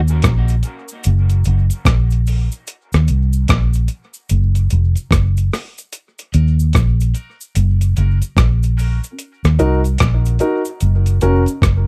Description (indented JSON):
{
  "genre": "dub reggae",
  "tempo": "74 BPM",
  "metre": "4/4",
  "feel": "swing 62% on 16ths",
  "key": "Eb dorian",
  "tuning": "A4 = 440 Hz",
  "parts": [
    { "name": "vintage muted fingered electric bass", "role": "bass", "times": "0.0-11.9 s", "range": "F1 to Eb2", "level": "-16 LUFS", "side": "equal", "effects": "none" },
    { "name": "cabasa", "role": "percussion", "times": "0.1-11.9 s", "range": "none", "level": "-38 LUFS", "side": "equal", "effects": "high-pass filter on perc" },
    { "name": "dusty soul sampler-style drum kit", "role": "drums", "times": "0.2-11.9 s", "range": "hi-hat, kick drum, rim click", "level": "-20 LUFS", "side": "equal", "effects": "overdrive" },
    { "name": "warm grand piano", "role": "stabs", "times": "6.3-11.4 s", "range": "Db4 to Bb4", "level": "-23 LUFS", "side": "equal", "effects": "high-pass filter, dub echo" }
  ],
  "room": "little or no reverb",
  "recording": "dry, close 1970s-style studio recording",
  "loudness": "-16 LUFS",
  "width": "mono",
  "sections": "0.0-11.9 A section",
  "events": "break 0.0-5.9",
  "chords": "0.0 Eb5; 1.0 Gb; 2.7 Eb5; 4.3 N.C.; 5.9 Ebm; 7.6 Gb; 9.2 Ebm; 10.8 Gb"
}